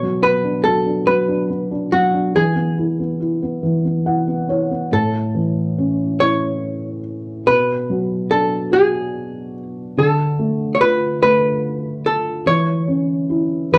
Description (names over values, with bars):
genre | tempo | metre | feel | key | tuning
children's music, lullaby | 47 BPM (dotted quarters) | 6/8 | rubato | A major | A4 = 440 Hz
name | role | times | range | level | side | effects
archtop guitar, miked and amplified | melody | 0.0-13.8 s | F#4 to C#5 | -19 LUFS | equal | none
felt-muted upright piano | accompaniment | 0.0-13.8 s | A2 to F#5 | -22 LUFS | equal | none
room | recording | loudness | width
moderate studio reverb, RT60 0.6 s | worn, warbling old tape, cassette tape, warbly pitch drift | -18 LUFS | mono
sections
0.0-4.9 A section; 4.9-13.8 B section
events
felt piano fill 3.6-4.9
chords
0.0 Bm; 2.4 E; 4.9 A; 7.5 Bm; 10.0 Dm; 12.5 C#m/E